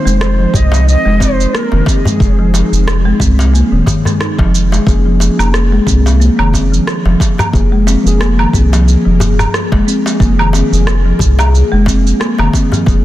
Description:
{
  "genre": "organic downtempo",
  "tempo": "90 BPM",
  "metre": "4/4",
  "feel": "swing 56% on 16ths",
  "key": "unclear",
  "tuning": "A4 = 440 Hz",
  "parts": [
    { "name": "mellow Native American-style cedar flute", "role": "melody", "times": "0.0-3.2 s", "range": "Ab4 to Eb5", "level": "-19 LUFS", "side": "right 1 dB", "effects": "digital delay" },
    { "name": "ethereal airy pad", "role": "sustained chords", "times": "0.0-13.0 s", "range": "F3 to Ab4", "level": "-23 LUFS", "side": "left 1 dB", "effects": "ensemble chorus, built-in reverb, vintage 12-bit sampler grit, sidechain pumping" },
    { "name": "folk marimba with soft mallets", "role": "arpeggios", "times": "0.0-12.9 s", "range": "Eb3 to Eb4", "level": "-16 LUFS", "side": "equal", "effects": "tape echo" },
    { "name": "round analog bass", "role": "bass", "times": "0.1-13.0 s", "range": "Eb1 to C2", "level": "-11 LUFS", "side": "equal", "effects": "sidechain pumping" },
    { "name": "electronic shaker, rim click and woodblock", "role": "drums", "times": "0.1-13.0 s", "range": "none", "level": "-20 LUFS", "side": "right 2 dB", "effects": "soft clipping on snare" },
    { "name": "electronic kick drum", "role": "drums", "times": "0.5-13.0 s", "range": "none", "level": "-14 LUFS", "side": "equal", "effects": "none" },
    { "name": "darbuka", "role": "percussion", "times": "0.5-13.0 s", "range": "none", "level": "-21 LUFS", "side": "left 2 dB", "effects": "none" },
    { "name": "muted felt-like synth keys", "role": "accompaniment", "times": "4.9-13.0 s", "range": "F3 to Ab4", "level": "-19 LUFS", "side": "left 3 dB", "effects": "chorus, sidechain pumping, tape echo" }
  ],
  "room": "light reverb",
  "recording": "dense, heavily limited modern master",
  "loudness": "-9 LUFS",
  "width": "side -14 dB against mid",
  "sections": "0.0-13.0 A section",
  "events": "none",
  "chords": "0.0 Fm7; 4.9 Bbm7/F",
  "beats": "0.20 0.87 1.54 | 2.20 2.87 3.54 4.20 | 4.87 5.54 6.20 6.87 | 7.54 8.20 8.87 9.54 | 10.20 10.87 11.54 12.20 | 12.87"
}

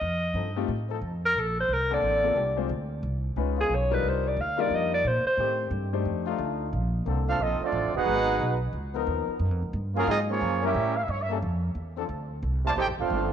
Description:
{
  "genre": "jazz, big band swing",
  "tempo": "179 BPM",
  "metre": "4/4",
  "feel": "swing 63% on 8ths",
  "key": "unclear",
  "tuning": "A4 = 440 Hz",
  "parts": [
    { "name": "breathy alto saxophone", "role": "melody", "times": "0.0-5.7 s", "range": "G#4 to F5", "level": "-26 LUFS", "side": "equal", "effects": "slapback echo" },
    { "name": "upright bass", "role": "bass", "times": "0.0-13.3 s", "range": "D1 to Bb2", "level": "-30 LUFS", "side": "right 1 dB", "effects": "none" },
    { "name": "warm trombone section", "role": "sustained chords", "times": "0.3-12.1 s", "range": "D3 to Bb4", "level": "-34 LUFS", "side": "left 8 dB", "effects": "none" },
    { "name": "warm grand piano", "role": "accompaniment", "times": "0.6-6.4 s", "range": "G3 to C5", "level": "-32 LUFS", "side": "left 12 dB", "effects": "none" },
    { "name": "mellow trumpet section", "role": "melody", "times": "7.3-13.3 s", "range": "Bb3 to A5", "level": "-28 LUFS", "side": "right 2 dB", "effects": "slapback echo" },
    { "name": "dark trombone section", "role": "second line", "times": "7.3-13.3 s", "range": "C3 to G4", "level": "-31 LUFS", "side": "right 11 dB", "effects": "slapback echo" }
  ],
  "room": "moderate echo chamber reverb, RT60 2.2 s",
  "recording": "1960s-style stereo with parts hard left and right",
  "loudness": "-24 LUFS",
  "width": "side -8 dB against mid",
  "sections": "0.0-6.7 A section; 6.7-13.3 B section",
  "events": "alto saxophone solo 0.0-6.7",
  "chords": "0.0 F7; 1.4 Bbmaj9; 2.7 Csus2; 3.4 C#9; 4.0 Cm11; 5.4 Am7b5; 6.1 F13; 6.7 Bbmaj9; 8.1 Abm7; 8.7 Db13; 9.4 Gbmaj9; 10.8 A7; 12.1 Dm7",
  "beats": "| 0.02 0.35 0.69 1.03 | 1.36 1.70 2.03 2.37 | 2.70 3.04 3.37 3.71 | 4.04 4.38 4.71 5.05 | 5.38 5.72 6.05 6.39 | 6.72 7.06 7.40 7.73 | 8.07 8.40 8.74 9.07 | 9.41 9.74 10.08 10.42 | 10.75 11.09 11.42 11.76 | 12.10 12.43 12.77 13.10"
}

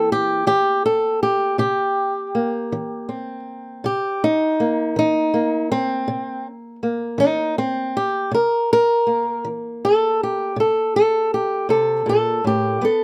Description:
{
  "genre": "acoustic country blues, solo or duo",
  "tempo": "53 BPM (dotted quarters)",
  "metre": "12/8",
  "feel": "straight",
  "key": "C mixolydian",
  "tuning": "A4 = 440 Hz",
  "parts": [
    { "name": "fingerpicked old ladder-braced acoustic guitar", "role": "solo", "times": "0.0-13.0 s", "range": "A2 to Bb4", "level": "-20 LUFS", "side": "equal", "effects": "none" }
  ],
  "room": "little or no reverb",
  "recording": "close, detailed microphones",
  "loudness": "-20 LUFS",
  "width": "mono",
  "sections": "0.0-13.0 A section",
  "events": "steel-string acoustic guitar solo 0.0-13.0",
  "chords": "0.0 C7",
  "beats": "0.47 1.59 2.72 | 3.84 4.96 6.08 7.21 | 8.33 9.45 10.57 11.70 | 12.82"
}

